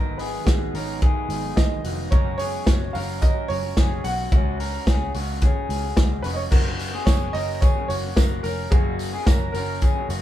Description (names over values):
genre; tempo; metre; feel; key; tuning
jangly indie pop; 109 BPM; 4/4; straight; F# major; A4 = 440 Hz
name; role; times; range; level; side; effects
warm upright piano; melody; 0.0-10.2 s; G#4 to F#5; -31 LUFS; right 3 dB; none
electric guitar through a small old amp; accompaniment; 0.0-10.2 s; G#2 to F#4; -34 LUFS; right 3 dB; none
electric guitar through a small old amp; arpeggios; 0.0-10.2 s; A#3 to A#4; -30 LUFS; left 3 dB; none
vintage muted picked electric bass; bass; 0.0-10.2 s; E#1 to C#2; -30 LUFS; equal; none
vintage drum kit; drums; 0.2-10.2 s; crash cymbal, hi-hat, kick drum, snare drum; -21 LUFS; equal; none
tambourine; percussion; 6.5-10.2 s; none; -42 LUFS; right 8 dB; none
room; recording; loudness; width
light reverb; band playing live in one room; -20 LUFS; side -12 dB against mid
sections
0.0-6.5 A section; 6.5-10.2 B section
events
none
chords
0.0 G#m7; 2.1 F#sus2; 4.3 C#sus4; 6.5 F#